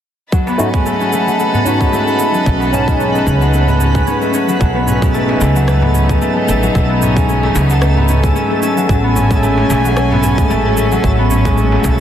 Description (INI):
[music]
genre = organic downtempo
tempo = 112 BPM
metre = 4/4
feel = swing 55% on 16ths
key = unclear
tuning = A4 = 438 Hz
[part]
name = warm studio string section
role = sustained chords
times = 0.3-12.0 s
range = F#3 to B5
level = -20 LUFS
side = equal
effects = sidechain pumping
[part]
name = concert harp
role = arpeggios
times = 0.3-12.0 s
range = F#3 to C#4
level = -16 LUFS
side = left 1 dB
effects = low-pass filter, tape echo
[part]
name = electronic kick drum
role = drums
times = 0.3-12.0 s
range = none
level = -18 LUFS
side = equal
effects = overdrive
[part]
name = electronic shaker and rim click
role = drums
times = 0.3-12.0 s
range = none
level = -27 LUFS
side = right 3 dB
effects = none
[part]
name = twinkling granular texture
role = texture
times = 0.8-12.0 s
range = A3 to B4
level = -23 LUFS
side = right 2 dB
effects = built-in reverb
[part]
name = darbuka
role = percussion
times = 0.5-12.0 s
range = none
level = -24 LUFS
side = equal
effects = none
[part]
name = barky tine electric piano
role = accompaniment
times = 0.6-4.6 s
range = A3 to A5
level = -19 LUFS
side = equal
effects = analog chorus, sidechain pumping, tape echo
[part]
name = upright bass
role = bass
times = 2.5-12.0 s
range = A1 to C#2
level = -15 LUFS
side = equal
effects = none
[sound]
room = light reverb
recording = dense, heavily limited modern master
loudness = -11 LUFS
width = side -10 dB against mid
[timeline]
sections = 0.3-4.6 A section; 4.6-12.0 B section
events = none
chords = 0.3 B7; 8.9 F#madd9/A